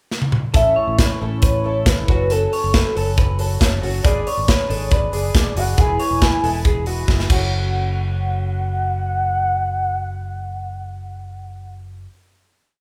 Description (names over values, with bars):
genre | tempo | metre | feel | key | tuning
jangly indie pop | 138 BPM | 4/4 | straight | F# minor | A4 = 440 Hz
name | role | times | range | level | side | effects
modern studio drum kit | drums | 0.1-7.4 s | crash cymbal, hi-hat, kick drum, snare drum, toms | -21 LUFS | equal | none
picked twelve-string acoustic guitar | accompaniment | 0.5-12.2 s | E3 to B4 | -32 LUFS | equal | none
electric guitar through a small old amp | arpeggios | 0.5-8.8 s | F#4 to C#5 | -29 LUFS | equal | none
fingered electric bass | bass | 0.5-12.1 s | E1 to A1 | -26 LUFS | equal | none
warm velvety synth lead | melody | 0.6-11.7 s | A4 to G#5 | -25 LUFS | equal | chorus
room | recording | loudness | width
light reverb | band playing live in one room | -19 LUFS | mono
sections
0.0-0.5 pickup bar; 0.5-7.5 verse; 7.5-11.0 final hit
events
drum fill 0.1-0.5, 7.1-7.5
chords
0.0 N.C.; 0.5 A; 2.1 F#m; 4.0 G#dim; 5.8 E; 7.3 F#m